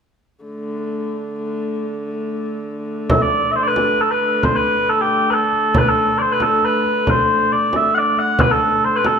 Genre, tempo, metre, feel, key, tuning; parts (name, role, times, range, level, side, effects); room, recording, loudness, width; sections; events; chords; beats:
medieval dance; 136 BPM; 3/4; straight; A4 = 438 Hz
warm hurdy-gurdy; drone; 0.5-9.2 s; D3 to A3; -23 LUFS; equal
mellow small bagpipes; melody; 3.1-9.2 s; G4 to F#5; -15 LUFS; equal
frame drum; percussion; 3.1-9.2 s; -22 LUFS; right 1 dB
moderate scoring stage reverb, RT60 1.9 s; minimal, uncompressed stereo recording; -15 LUFS; side -6 dB against mid
0.5-3.1 A section; 3.1-9.2 B section
| 0.45 0.90 1.34 | 1.78 2.22 2.66 | 3.10 3.54 3.98 | 4.42 4.86 5.30 | 5.75 6.19 6.63 | 7.07 7.51 7.95 | 8.39 8.83